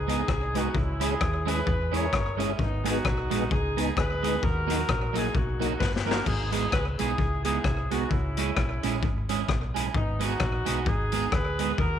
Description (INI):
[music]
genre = ska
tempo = 130 BPM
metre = 4/4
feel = swing 57% on 8ths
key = G# minor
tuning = A4 = 440 Hz
[part]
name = clear horn section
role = melody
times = 0.0-12.0 s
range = B3 to C#5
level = -31 LUFS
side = left 1 dB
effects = none
[part]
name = hollow-body short-scale fingered electric bass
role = bass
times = 0.0-12.0 s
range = G1 to E2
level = -31 LUFS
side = equal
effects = transformer saturation
[part]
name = electric guitar at the edge of break-up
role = accompaniment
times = 0.1-11.7 s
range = F#3 to G#4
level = -31 LUFS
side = right 11 dB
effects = phaser, slapback echo
[part]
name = mellow tonewheel organ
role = stabs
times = 0.1-6.2 s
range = A#3 to G#4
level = -35 LUFS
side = left 8 dB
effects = overdrive, chorus vibrato, fast rotary speaker
[part]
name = raw garage drum kit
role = drums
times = 0.1-11.9 s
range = crash cymbal, hi-hat, kick drum, rim click, snare drum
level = -29 LUFS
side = left 2 dB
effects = slapback echo
[sound]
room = moderate spring reverb, RT60 2.1 s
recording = 1960s-style stereo with parts hard left and right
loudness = -24 LUFS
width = side -9 dB against mid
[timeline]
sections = 0.0-6.3 A section; 6.3-12.0 A section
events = drum fill 5.8-6.3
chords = 0.0 G#m; 0.8 C#m; 2.6 G#m; 4.4 D#m; 6.3 G#m; 8.1 C#m; 9.9 G#m